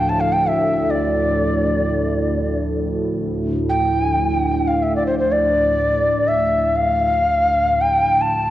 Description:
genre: world meditative, free-time meditation music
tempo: free time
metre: none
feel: none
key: D minor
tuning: A4 = 439 Hz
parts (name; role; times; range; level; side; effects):
- breathy mellow Native American-style cedar flute; melody; 0.0-8.5 s; C5 to A5; -18 LUFS; left 1 dB; cassette tape
- deep dark ambient pad; drone; 0.0-8.5 s; D2 to A2; -21 LUFS; equal; chorus, built-in reverb
- bronze singing bowl; texture; 0.0-1.5 s; F3; -33 LUFS; right 4 dB; none
room: wet spring reverb, RT60 2.5 s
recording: home recording on cassette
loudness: -16 LUFS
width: side -13 dB against mid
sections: 0.0-8.5 A section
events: none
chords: none

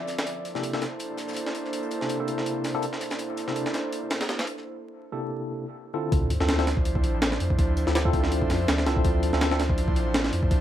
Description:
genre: drum and bass, jungle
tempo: 164 BPM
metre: 4/4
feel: swing 55% on 16ths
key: D minor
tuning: A4 = 441 Hz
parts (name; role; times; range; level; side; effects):
- airy breathy pad; sustained chords; 0.0-10.6 s; F3 to E5; -31 LUFS; right 1 dB; chorus
- breakbeat sampler-style drum kit; drums; 0.1-10.6 s; hi-hat, kick drum, snare drum; -26 LUFS; equal; high-pass filter on hats, high-pass filter on snare, high-pass filter on kick
- damped 70s drum kit; drums; 0.1-4.7 s; hi-hat, snare drum; -42 LUFS; left 2 dB; high-pass filter on hats, high-pass filter on snare, high-pass filter on room
- bright tine electric piano; stabs; 0.6-9.6 s; C3 to A4; -31 LUFS; left 2 dB; medium stereo tremolo, vintage 12-bit sampler grit, dub echo
- soft dub sub bass; bass; 6.1-10.6 s; A1 to F2; -27 LUFS; equal; none
- sub drop; sound effects; 6.1-7.6 s; none; -35 LUFS; equal; none
room: light reverb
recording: vinyl crackle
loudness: -24 LUFS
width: side -11 dB against mid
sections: 0.0-6.1 A section; 6.1-10.6 B section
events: break 4.7-6.1; drop 6.1-10.6; impact 6.1-7.6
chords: 0.3 C13; 6.1 Dm9

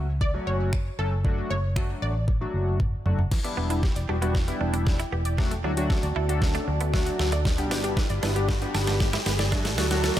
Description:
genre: dance-pop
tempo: 116 BPM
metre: 4/4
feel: straight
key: E dorian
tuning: A4 = 440 Hz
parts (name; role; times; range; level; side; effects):
- wide unison pluck; melody; 0.0-2.8 s; A4 to E5; -34 LUFS; equal; ping-pong delay
- chorused polysynth; accompaniment; 0.0-10.2 s; F#3 to A4; -31 LUFS; left 1 dB; sidechain pumping
- vintage muted fingered electric bass; bass; 0.0-10.2 s; E1 to D2; -27 LUFS; equal; sidechain pumping
- smooth R&B drum kit; drums; 0.2-10.2 s; crash cymbal, finger snaps, hi-hat, kick drum, shaker, snare drum, toms; -26 LUFS; equal; none
- glassy FM pad; sustained chords; 3.8-10.2 s; E4 to B5; -34 LUFS; right 1 dB; ensemble chorus, built-in reverb, sidechain pumping
- wide unison pluck; arpeggios; 3.3-10.2 s; E3 to D5; -36 LUFS; equal; sidechain pumping, ping-pong delay
- riser; sound effects; 5.1-10.2 s; none; -37 LUFS; equal; none
- direct-recorded clean electric guitar; riff; 3.4-9.9 s; A3 to E4; -36 LUFS; right 8 dB; analog chorus
room: little or no reverb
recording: none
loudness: -23 LUFS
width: side -12 dB against mid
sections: 0.0-3.3 A section; 3.3-10.2 B section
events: drum fill 2.3-3.3, 3.3-10.2; build-up 3.3-10.2; riser 5.1-10.2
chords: 0.0 F#m; 1.2 D/F#; 3.3 Em7; 5.4 D; 7.5 G; 9.5 D

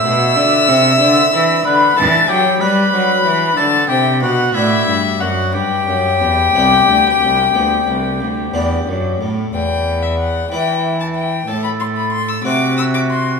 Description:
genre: classical, baroque-style sonata movement with continuo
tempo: 62 BPM (dotted quarters)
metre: 12/8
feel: straight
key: G major, E minor from 9.5 s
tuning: A4 = 440 Hz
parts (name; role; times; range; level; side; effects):
- warm violin; melody; 0.0-13.4 s; E5 to E6; -16 LUFS; left 8 dB; none
- warm oboe; second line; 0.0-13.4 s; E4 to E5; -18 LUFS; right 5 dB; none
- harpsichord; accompaniment; 0.0-13.4 s; C2 to C5; -21 LUFS; left 2 dB; none
- rich cello; bass; 0.0-13.4 s; C2 to G3; -18 LUFS; equal; none
room: moderate concert hall reverb, RT60 1.8 s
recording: small room ambience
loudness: -12 LUFS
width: side -4 dB against mid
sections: 0.0-9.5 A section; 9.5-13.4 A section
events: none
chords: 0.0 Am (rootless); 1.6 G/D; 3.6 D7; 5.5 G; 9.5 E5; 11.5 F#dim/A

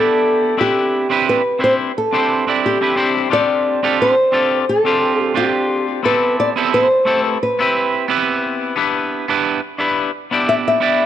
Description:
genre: chillout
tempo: 88 BPM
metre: 4/4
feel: swing 55% on 16ths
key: C major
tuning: A4 = 440 Hz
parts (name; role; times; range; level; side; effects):
- nylon-string guitar; melody; 0.0-11.1 s; G4 to E5; -16 LUFS; equal; tape echo
- clean electric guitar; accompaniment; 0.0-11.1 s; A3 to D5; -17 LUFS; moving between left 4 dB and right 6 dB; auto-pan, tape echo
room: light reverb, small room reverb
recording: dry, gritty hardware recording, nothing above 10.4 kHz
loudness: -14 LUFS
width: side -10 dB against mid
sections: 0.0-11.1 A section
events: none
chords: 0.0 Em7/B; 0.6 Cmaj9; 3.3 F69; 6.0 Am9; 8.8 Em7/B

